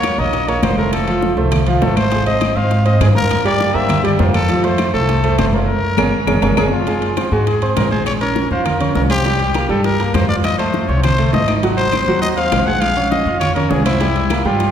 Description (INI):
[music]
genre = latin, salsa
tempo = 202 BPM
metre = 4/4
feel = straight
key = unclear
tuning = A4 = 445 Hz
[part]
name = growling trumpet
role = melody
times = 0.0-14.7 s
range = E4 to Gb5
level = -20 LUFS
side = left 2 dB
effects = none
[part]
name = clear grand piano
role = accompaniment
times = 0.0-14.7 s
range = F3 to Ab6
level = -19 LUFS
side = right 2 dB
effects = none
[part]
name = upright bass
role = bass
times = 0.0-14.7 s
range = F1 to Ab2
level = -19 LUFS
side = equal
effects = none
[part]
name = bongos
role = percussion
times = 0.0-14.7 s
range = none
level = -26 LUFS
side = left 4 dB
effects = none
[part]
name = claves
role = percussion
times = 0.0-14.4 s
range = none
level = -31 LUFS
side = left 4 dB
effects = none
[part]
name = congas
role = percussion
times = 0.0-14.7 s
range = none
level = -23 LUFS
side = equal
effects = none
[part]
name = timbales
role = percussion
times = 0.0-14.7 s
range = none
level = -26 LUFS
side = right 3 dB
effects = none
[sound]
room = wet concert hall reverb, RT60 1.9 s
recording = heard from further back in the room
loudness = -13 LUFS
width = side -9 dB against mid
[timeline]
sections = 0.0-6.9 A section; 6.9-14.7 B section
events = band accent 5.7-6.9; drum fill 6.0-6.9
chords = 0.0 Eb7(no3); 0.9 F; 2.1 Ab; 3.3 C7/G; 4.5 F; 5.7 Gbadd9; 6.9 Ab69; 8.1 Bbm7; 9.3 C5; 10.4 F7; 11.6 Ab7; 12.8 Bbm7; 14.0 C7